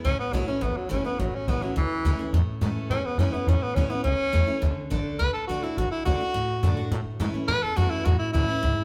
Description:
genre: rockabilly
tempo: 210 BPM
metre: 4/4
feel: straight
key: A major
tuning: A4 = 438 Hz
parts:
  - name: breathy tenor saxophone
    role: melody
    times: 0.0-8.8 s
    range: E3 to B4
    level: -30 LUFS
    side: equal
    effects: none
  - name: picked steel-string acoustic guitar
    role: accompaniment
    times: 0.0-8.8 s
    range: E2 to F#4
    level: -33 LUFS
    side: equal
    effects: none
  - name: upright bass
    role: bass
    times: 0.0-8.8 s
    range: G#1 to A2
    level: -28 LUFS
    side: equal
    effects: none
room: wet large studio reverb, RT60 1.3 s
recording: band playing live in one room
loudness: -26 LUFS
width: mono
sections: 0.0-8.8 A section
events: tenor saxophone solo 0.0-8.8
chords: 0.0 A; 4.6 D; 6.9 A

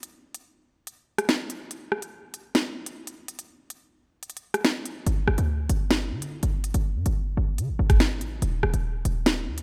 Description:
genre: hip hop, drill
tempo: 143 BPM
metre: 4/4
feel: half-time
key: unclear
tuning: A4 = 440 Hz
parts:
  - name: drill drum kit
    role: drums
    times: 0.0-9.6 s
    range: hi-hat, kick drum, rim click, snare drum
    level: -27 LUFS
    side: equal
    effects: none
  - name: short 808-style bass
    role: bass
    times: 5.1-9.6 s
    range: Eb1 to D3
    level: -28 LUFS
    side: equal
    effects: none
room: light reverb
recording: none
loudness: -26 LUFS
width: mono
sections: 0.0-9.6 A section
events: break 0.0-5.1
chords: none

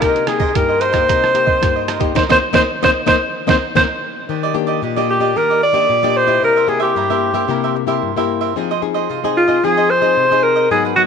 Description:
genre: samba and choro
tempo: 112 BPM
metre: 4/4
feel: straight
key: C minor, Eb major from 4.3 s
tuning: A4 = 440 Hz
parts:
  - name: breathy alto saxophone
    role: melody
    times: 0.0-11.0 s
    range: F4 to D5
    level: -14 LUFS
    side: equal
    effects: slapback echo
  - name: cavaquinho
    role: accompaniment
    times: 0.0-11.0 s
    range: D4 to Gb5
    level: -22 LUFS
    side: right 12 dB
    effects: none
  - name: nylon-string guitar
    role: accompaniment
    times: 0.0-11.1 s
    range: G2 to Ab4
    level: -20 LUFS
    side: left 11 dB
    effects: none
  - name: lo-fi sampler-style drum kit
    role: drums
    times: 0.0-3.9 s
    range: hi-hat, kick drum, rim click, snare drum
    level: -20 LUFS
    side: right 4 dB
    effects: none
room: moderate plate reverb, RT60 2.8 s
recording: 1960s-style stereo with parts hard left and right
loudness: -13 LUFS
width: side -6 dB against mid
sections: 0.0-4.3 A section; 4.3-11.1 B section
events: band accent 2.2-4.3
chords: 0.0 Cm7; 4.3 Ebmaj7; 6.4 C7; 8.6 Fm7

